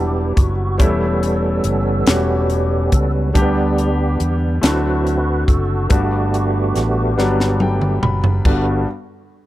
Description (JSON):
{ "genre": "slow gospel", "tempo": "47 BPM (dotted quarters)", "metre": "6/8", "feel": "straight", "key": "G major", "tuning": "A4 = 441 Hz", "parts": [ { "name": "clear baby grand piano", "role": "accompaniment", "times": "0.0-8.9 s", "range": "G2 to B5", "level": "-21 LUFS", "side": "left 2 dB", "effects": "none" }, { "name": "tonewheel organ", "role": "sustained chords", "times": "0.0-8.9 s", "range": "D3 to B4", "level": "-21 LUFS", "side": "right 2 dB", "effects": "slow rotary speaker, overdrive, chorus vibrato" }, { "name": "fingered electric bass", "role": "bass", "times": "0.0-8.8 s", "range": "E1 to E2", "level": "-20 LUFS", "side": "equal", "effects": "none" }, { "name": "crisp fusion drum kit", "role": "drums", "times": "0.4-8.6 s", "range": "crash cymbal, hi-hat, kick drum, snare drum, toms", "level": "-16 LUFS", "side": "equal", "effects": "none" } ], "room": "small room reverb", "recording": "dry, close 1970s-style studio recording", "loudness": "-15 LUFS", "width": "side -15 dB against mid", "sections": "0.0-8.4 A section; 8.4-9.5 B section", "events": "tonewheel organ solo 0.0-8.4; drum fill 7.2-8.4; grand piano fill 7.2-8.4", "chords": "0.0 Em7; 0.8 A7/E; 3.3 G/D; 4.6 D7; 5.9 Gmaj7" }